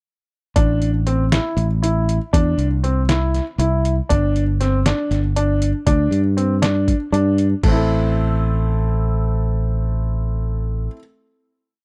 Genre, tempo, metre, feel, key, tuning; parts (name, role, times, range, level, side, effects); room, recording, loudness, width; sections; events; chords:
progressive instrumental, band music in an uneven meter; 238 BPM (eighths); 7/8; straight; A minor; A4 = 440 Hz
warm concert grand piano; arpeggios; 0.6-11.0 s; A3 to A4; -24 LUFS; equal
fingered electric bass; bass; 0.6-10.9 s; G1 to G2; -21 LUFS; equal
lo-fi sampler-style drum kit; drums; 0.6-7.8 s; crash cymbal, hi-hat, kick drum, snare drum; -23 LUFS; equal; overdrive
little or no reverb; dry, close 1970s-style studio recording; -19 LUFS; mono
0.6-7.6 groove; 7.6-11.2 final chord
kick and snare drop out 7.1-7.6
0.6 Am; 4.1 G5; 5.9 Dsus4; 7.6 Am